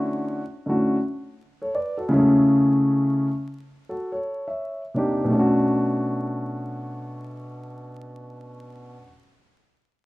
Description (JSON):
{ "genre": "hip hop", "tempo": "84 BPM", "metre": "4/4", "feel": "swing 63% on 16ths", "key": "B dorian", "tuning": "A4 = 441 Hz", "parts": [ { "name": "dark baby grand piano", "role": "solo", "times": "0.0-9.1 s", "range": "B2 to E5", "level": "-21 LUFS", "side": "equal", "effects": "none" } ], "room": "wet large studio reverb, RT60 1.1 s", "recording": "band playing live in one room, vinyl crackle", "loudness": "-20 LUFS", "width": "side -20 dB against mid", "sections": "0.0-5.3 A section; 5.3-8.2 B section", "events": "none", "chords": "0.0 Dmaj7; 2.1 F#m9/C#; 4.6 Cm9; 5.3 Bm9" }